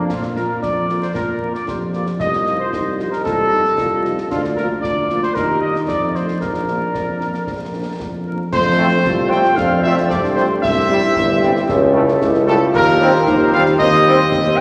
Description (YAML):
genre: military-style march for wind band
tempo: 114 BPM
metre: 2/4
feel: straight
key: Bb major, F major from 8.5 s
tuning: A4 = 440 Hz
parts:
  - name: bright trombone section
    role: sustained chords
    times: 0.0-0.1, 8.8-14.2 s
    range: G3 to C4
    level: -27 LUFS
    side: equal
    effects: none
  - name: mellow trumpet section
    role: melody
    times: 0.1-14.6 s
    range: F4 to G5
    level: -21 LUFS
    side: equal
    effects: none
  - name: dark woodwind section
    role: second line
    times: 0.1-14.6 s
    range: F4 to Eb5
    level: -29 LUFS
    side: equal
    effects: none
  - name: warm euphonium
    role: second line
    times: 0.1-14.6 s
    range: A3 to G4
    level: -26 LUFS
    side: equal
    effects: none
  - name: warm tuba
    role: bass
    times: 0.1-14.6 s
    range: G1 to Bb2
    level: -22 LUFS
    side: equal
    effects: none
  - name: concert snare drum, clash cymbals and concert bass drum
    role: drums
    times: 0.1-14.6 s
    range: none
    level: -31 LUFS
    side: equal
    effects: none
  - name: dark French horn section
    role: accompaniment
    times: 0.4-14.6 s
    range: F3 to C5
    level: -29 LUFS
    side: equal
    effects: none
room: wet concert hall reverb, RT60 2.4 s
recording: vinyl crackle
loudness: -17 LUFS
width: mono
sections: 0.1-8.5 A section; 8.5-14.6 B section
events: none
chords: 0.1 Bb; 2.2 F7/C; 4.3 Bb/D; 5.4 Eb; 5.9 F7; 6.4 Bb; 8.5 F; 10.6 C; 11.7 A7/C#; 12.7 Cm7/Eb